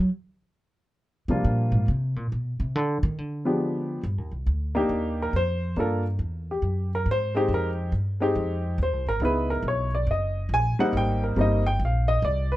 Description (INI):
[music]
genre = jazz piano trio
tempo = 139 BPM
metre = 4/4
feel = swing 65% on 8ths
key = C minor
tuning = A4 = 439 Hz
[part]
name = upright bass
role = bass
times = 0.0-12.6 s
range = F#1 to Eb3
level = -25 LUFS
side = equal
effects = none
[part]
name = warm baby grand piano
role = melody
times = 1.3-12.6 s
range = F3 to Ab5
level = -25 LUFS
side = equal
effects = none
[sound]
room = light reverb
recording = dark, warm production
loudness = -23 LUFS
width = side -15 dB against mid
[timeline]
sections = 0.0-4.0 A section; 4.0-12.6 A section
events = upright bass solo 0.0-4.0; grand piano solo 4.0-12.6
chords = 0.0 N.C.; 0.6 Gm7; 2.3 G7b9; 4.0 Cm9; 5.8 Gm7; 6.6 F#sus2; 7.5 Fm7; 9.2 Dbm7; 10.1 F#; 10.9 Abmaj7